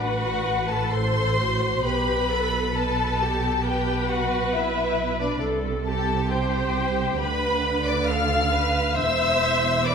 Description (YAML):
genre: classical, slow romantic movement for string orchestra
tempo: 67 BPM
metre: 4/4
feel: rubato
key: G major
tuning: A4 = 440 Hz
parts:
  - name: rich studio violin section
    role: melody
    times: 0.0-9.9 s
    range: D5 to F6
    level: -27 LUFS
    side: left 4 dB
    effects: none
  - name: warm studio violin section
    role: second line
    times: 0.0-9.9 s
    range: D4 to F5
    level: -27 LUFS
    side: left 2 dB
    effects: none
  - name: rich studio viola section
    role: accompaniment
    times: 0.0-9.9 s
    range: F#4 to C5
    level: -28 LUFS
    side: right 2 dB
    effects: none
  - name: warm studio cello section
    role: bass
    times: 0.0-9.9 s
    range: E2 to D3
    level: -29 LUFS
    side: right 2 dB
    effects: none
  - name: warm studio double bass section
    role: bass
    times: 0.0-9.9 s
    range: E1 to D2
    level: -29 LUFS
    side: right 3 dB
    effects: none
room: moderate scoring stage reverb, RT60 2.2 s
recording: minimal, uncompressed stereo recording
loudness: -21 LUFS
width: side -6 dB against mid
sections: 0.0-9.9 A section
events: none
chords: 0.0 Am69; 1.8 Gmaj13/B; 5.4 C5; 7.2 Dm6; 9.0 C/E